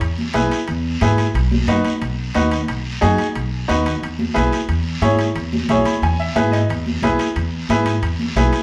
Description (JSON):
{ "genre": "latin, cumbia", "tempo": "180 BPM", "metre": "4/4", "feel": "straight", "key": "E major", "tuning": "A4 = 440 Hz", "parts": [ { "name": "upright bass", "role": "bass", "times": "0.0-8.5 s", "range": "B1 to G#2", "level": "-23 LUFS", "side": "equal", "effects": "none" }, { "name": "guiro", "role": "percussion", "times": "0.0-8.6 s", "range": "none", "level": "-34 LUFS", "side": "equal", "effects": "none" }, { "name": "timbales", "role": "percussion", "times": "0.0-8.6 s", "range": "none", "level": "-34 LUFS", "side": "equal", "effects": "none" }, { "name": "congas", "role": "percussion", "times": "0.2-8.5 s", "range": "none", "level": "-26 LUFS", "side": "equal", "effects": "none" }, { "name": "bright upright piano", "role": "accompaniment", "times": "0.3-8.6 s", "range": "D#4 to B5", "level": "-22 LUFS", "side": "equal", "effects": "none" } ], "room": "moderate large studio reverb, RT60 1.1 s", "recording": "band playing live in one room", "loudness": "-19 LUFS", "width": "mono", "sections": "0.0-8.6 A section", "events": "upright piano fill 5.7-6.7", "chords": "0.0 E; 1.4 B; 4.0 E" }